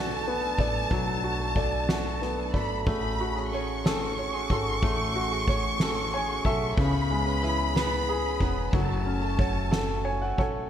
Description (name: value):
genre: six-eight pop ballad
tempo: 61 BPM (dotted quarters)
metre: 6/8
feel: straight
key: F# minor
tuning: A4 = 441 Hz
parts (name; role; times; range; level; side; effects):
- warm symphonic violin section; second line; 0.0-10.4 s; A5 to C#6; -31 LUFS; right 1 dB; none
- clear baby grand piano; accompaniment; 0.0-10.7 s; C#3 to G#5; -30 LUFS; left 2 dB; none
- direct-recorded clean electric guitar; arpeggios; 0.0-10.7 s; F#2 to A4; -34 LUFS; right 5 dB; analog chorus
- upright bass; bass; 0.0-10.7 s; E1 to C#2; -32 LUFS; equal; none
- soft-mallet drum kit; drums; 0.3-10.5 s; kick drum, ride cymbal, snare drum; -30 LUFS; equal; gated reverb
room: light reverb, small room ambience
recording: bright 1980s-style digital production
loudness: -24 LUFS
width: side -10 dB against mid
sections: 0.0-10.7 A section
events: grand piano fill 5.8-6.8, 9.7-10.7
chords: 0.0 Bm7; 2.9 F#madd9; 6.8 C#m7; 8.7 F#m